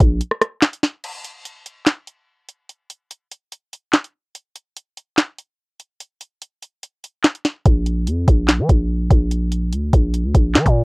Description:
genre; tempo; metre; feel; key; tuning
hip hop, drill; 145 BPM; 4/4; half-time; unclear; A4 = 440 Hz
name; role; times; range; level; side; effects
growling 808-style bass; bass; 0.0-0.2, 7.7-10.8 s; Bb1 to F3; -18 LUFS; equal; none
drill drum kit; drums; 0.0-10.8 s; crash cymbal, handclaps, hi-hat, kick drum, rim click, snare drum; -16 LUFS; equal; none
room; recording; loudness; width
little or no reverb; worn, warbling old tape, cassette tape, warbly pitch drift; -16 LUFS; side -38 dB against mid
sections
0.0-1.0 A section; 1.0-10.8 B section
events
break 0.2-1.0, 1.0-7.7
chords
none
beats
0.21 0.62 | 1.04 1.45 1.86 2.28 | 2.69 3.11 3.52 3.93 | 4.35 4.76 5.17 5.59 | 6.00 6.42 6.83 7.24 | 7.66 8.07 8.48 8.90 | 9.31 9.73 10.14 10.55

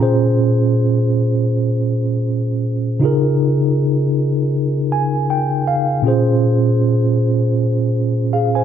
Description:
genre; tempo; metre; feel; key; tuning
reggae; 79 BPM; 4/4; swing 59% on 16ths; Bb minor; A4 = 440 Hz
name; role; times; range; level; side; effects
mellow tine electric piano; solo; 0.0-8.6 s; Bb2 to Ab5; -14 LUFS; right 1 dB; medium stereo tremolo
room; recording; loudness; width
wet echo chamber reverb, RT60 2.0 s; dark, warm production; -14 LUFS; side -9 dB against mid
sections
0.0-8.6 A section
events
tine electric piano fill 4.5-6.1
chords
0.0 Bbm7; 3.0 Db6; 6.1 Bbm7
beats
0.75 1.51 2.26 | 3.02 3.78 4.54 5.29 | 6.05 6.81 7.57 8.33

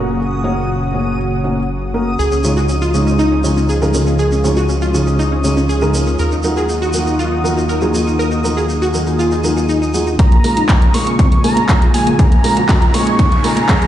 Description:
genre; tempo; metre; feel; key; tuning
progressive house; 120 BPM; 4/4; straight; Bb minor; A4 = 440 Hz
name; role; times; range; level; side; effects
lush unison pad; sustained chords; 0.0-13.9 s; Bb2 to Ab4; -20 LUFS; equal; chorus, sidechain pumping
felt-muted upright piano; stabs; 0.0-13.9 s; Bb2 to Db5; -19 LUFS; right 1 dB; sidechain pumping, ping-pong delay
round analog bass; bass; 0.0-13.9 s; Gb1 to Eb2; -21 LUFS; equal; sidechain pumping, high-pass filter
backwards swelling texture; texture; 0.0-13.9 s; Ab5 to Eb6; -28 LUFS; left 2 dB; built-in reverb, sidechain pumping
wide unison pluck; arpeggios; 2.2-13.9 s; Bb3 to Bb4; -20 LUFS; equal; vintage 12-bit sampler grit, sidechain pumping, ping-pong delay
tube shaker; percussion; 2.2-10.2 s; none; -28 LUFS; right 2 dB; none
wide unison lead; melody; 10.2-13.9 s; Ab5 to Db6; -20 LUFS; right 1 dB; tape echo
airy dreamy lead; second line; 10.2-13.9 s; Ab5 to Db6; -25 LUFS; right 1 dB; none
electronic kick drum; drums; 10.2-13.8 s; none; -12 LUFS; equal; none
house drum kit; drums; 10.2-13.9 s; handclaps, hi-hat; -22 LUFS; equal; overdrive, low-pass filter on hats, low-pass filter on snare, low-pass filter on room
riser; sound effects; 11.4-13.9 s; none; -28 LUFS; right 1 dB; none
room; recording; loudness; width
moderate lush hall reverb, RT60 2.3 s; played on a big sound system in a bare room, large studio reverb, nothing above 10.4 kHz; -12 LUFS; side -12 dB against mid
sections
0.0-10.2 A section; 10.2-13.9 B section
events
build-up 10.2-13.9; riser 11.4-13.9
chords
0.0 Gb; 2.2 Dbadd9; 6.2 Ebmadd9; 10.2 Bbm7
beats
| 0.19 0.69 1.19 1.69 | 2.19 2.69 3.19 3.69 | 4.19 4.69 5.19 5.69 | 6.19 6.69 7.19 7.69 | 8.19 8.69 9.19 9.69 | 10.19 10.69 11.19 11.69 | 12.19 12.69 13.19 13.69

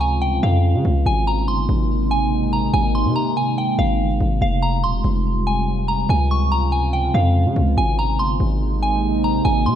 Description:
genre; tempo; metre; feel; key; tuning
hip hop, drill; 143 BPM; 4/4; half-time; unclear; A4 = 439 Hz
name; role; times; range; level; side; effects
soft synth bell; melody; 0.0-9.8 s; F5 to Db6; -22 LUFS; equal; chorus, ping-pong delay
deep dark ambient pad; sustained chords; 0.0-9.8 s; C3 to F4; -23 LUFS; right 2 dB; chorus, built-in reverb
distorted 808-style bass; bass; 0.0-9.8 s; Eb1 to Db3; -19 LUFS; equal; distortion
room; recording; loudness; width
moderate recital hall reverb, RT60 1.4 s; dark, warm production; -17 LUFS; side -10 dB against mid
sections
0.0-9.8 A section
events
none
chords
0.0 Dbmaj7; 1.1 Abadd9; 4.4 Fmadd9; 6.1 Dbmaj7; 7.8 Abadd9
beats
0.22 0.64 | 1.06 1.48 1.90 2.32 | 2.74 3.16 3.58 4.00 | 4.42 4.83 5.25 5.67 | 6.09 6.51 6.93 7.35 | 7.77 8.19 8.61 9.03 | 9.45

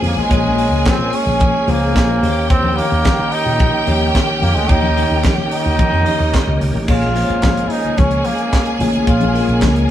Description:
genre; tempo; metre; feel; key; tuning
disco; 110 BPM; 4/4; straight; Bb dorian; A4 = 440 Hz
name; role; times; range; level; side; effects
clear studio string section; second line; 0.0-9.9 s; Eb4 to Ab5; -23 LUFS; equal; none
bell-like tine electric piano; accompaniment; 0.0-9.9 s; Eb3 to Eb5; -20 LUFS; left 2 dB; fast stereo tremolo
bright tonewheel organ; sustained chords; 0.0-9.9 s; Eb3 to G4; -25 LUFS; right 1 dB; overdrive, chorus vibrato, fast rotary speaker
slap bass with an envelope filter; bass; 0.0-9.8 s; Ab1 to Eb3; -19 LUFS; equal; none
tight funk drum kit; drums; 0.0-9.9 s; crash cymbal, handclaps, hi-hat, kick drum, snare drum; -18 LUFS; equal; none
congas; percussion; 0.0-9.9 s; none; -26 LUFS; left 4 dB; none
brilliant trombone; melody; 0.1-9.6 s; Ab3 to F4; -20 LUFS; right 2 dB; none
room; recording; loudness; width
moderate studio reverb, RT60 0.8 s; band playing live in one room; -13 LUFS; side -11 dB against mid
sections
0.0-6.9 A section; 6.9-9.9 B section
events
none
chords
0.0 Bbm7; 2.2 Eb7; 6.9 Bbm7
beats
| 0.31 0.86 1.41 1.96 | 2.50 3.05 3.60 4.15 | 4.70 5.25 5.79 6.34 | 6.89 7.44 7.99 8.53 | 9.08 9.63

